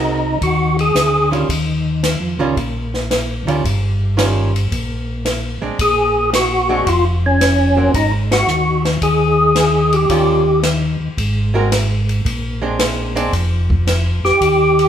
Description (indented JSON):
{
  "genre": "soul jazz organ trio",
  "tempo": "111 BPM",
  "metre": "4/4",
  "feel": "swing 69% on 8ths",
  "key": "Eb mixolydian",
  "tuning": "A4 = 440 Hz",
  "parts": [
    { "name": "percussive tonewheel organ", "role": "melody", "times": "0.0-1.3, 5.8-10.6, 14.2-14.9 s", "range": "Db4 to Ab4", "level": "-14 LUFS", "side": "equal", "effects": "slow rotary speaker, overdrive, chorus vibrato" },
    { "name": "archtop guitar, miked and amplified", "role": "accompaniment", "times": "0.0-13.3 s", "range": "Eb3 to Bb4", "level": "-22 LUFS", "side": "right 3 dB", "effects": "none" },
    { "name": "tonewheel organ", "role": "bass", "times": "0.0-14.9 s", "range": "F1 to F2", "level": "-18 LUFS", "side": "equal", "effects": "chorus vibrato, stopped rotary speaker" },
    { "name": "compact cocktail drum kit", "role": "drums", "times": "0.4-14.9 s", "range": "hi-hat, kick drum, ride cymbal, snare drum", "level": "-22 LUFS", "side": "equal", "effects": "none" }
  ],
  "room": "moderate large studio reverb, RT60 1.1 s",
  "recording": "band playing live in one room",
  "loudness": "-14 LUFS",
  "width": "side -9 dB against mid",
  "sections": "0.0-14.4 A section",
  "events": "band accent 8.2",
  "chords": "0.0 Ab9; 1.5 Eb9; 5.8 Bb7sus2; 7.9 Ab5; 10.1 Eb9; 11.2 Ab9; 12.3 Bb9"
}